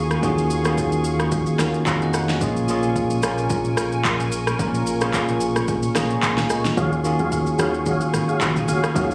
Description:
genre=amapiano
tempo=110 BPM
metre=4/4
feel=swing 55% on 16ths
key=Eb minor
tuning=A4 = 440 Hz
part: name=bell-like tine electric piano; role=accompaniment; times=0.0-9.1 s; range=Bb2 to Bb5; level=-24 LUFS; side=equal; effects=none
part: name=hollow soft pad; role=sustained chords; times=0.0-9.1 s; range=Ab4 to Db6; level=-32 LUFS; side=equal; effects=ensemble chorus, sidechain pumping
part: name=warm sub bass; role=bass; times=0.0-6.7 s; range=Bb1 to F2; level=-35 LUFS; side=equal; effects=none
part: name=deep house drum kit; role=drums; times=0.1-9.1 s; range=handclaps, kick drum, rim click, shaker, snare drum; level=-27 LUFS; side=equal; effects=overdrive
part: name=mellow tonewheel organ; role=stabs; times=6.8-9.1 s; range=Gb4 to F5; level=-28 LUFS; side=equal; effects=overdrive, chorus vibrato, slow rotary speaker, delay
part: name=woody log drum bass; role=bass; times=6.8-9.1 s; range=Ab1 to Eb2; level=-30 LUFS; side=equal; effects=none
room=light reverb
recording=recorded on a phone in the room, studio reverb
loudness=-21 LUFS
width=mono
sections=0.0-9.1 A section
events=tine electric piano fill 1.6-2.4, 5.7-6.8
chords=0.0 Ebm11; 2.4 Bbm7; 6.8 Ebm11

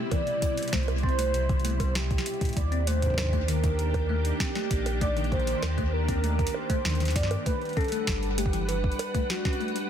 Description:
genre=IDM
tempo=98 BPM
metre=4/4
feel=straight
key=unclear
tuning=A4 = 441 Hz
part: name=warm velvety synth lead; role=melody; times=0.0-9.9 s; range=F#4 to D5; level=-32 LUFS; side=right 1 dB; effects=chorus, digital delay
part: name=soft string machine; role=sustained chords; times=0.0-9.9 s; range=B2 to F#5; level=-34 LUFS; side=equal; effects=ensemble chorus
part: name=bell-like tine electric piano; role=arpeggios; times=0.1-9.7 s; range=A2 to C#4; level=-36 LUFS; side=left 3 dB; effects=fast stereo tremolo, ping-pong delay
part: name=electro analog drum machine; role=drums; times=0.1-9.9 s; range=bongos, hi-hat, snare drum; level=-34 LUFS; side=right 1 dB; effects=studio reverb, ping-pong delay
part: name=electronic kick drum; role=drums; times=0.1-9.6 s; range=none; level=-29 LUFS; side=equal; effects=studio reverb
part: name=warm sub bass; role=bass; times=0.7-8.9 s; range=G1 to G2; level=-28 LUFS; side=equal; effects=none
room=light reverb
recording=dense, heavily limited modern master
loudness=-24 LUFS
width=side -9 dB against mid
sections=0.0-9.9 A section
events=none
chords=0.0 Cmaj7; 2.6 D#maj7; 7.5 Gmaj7

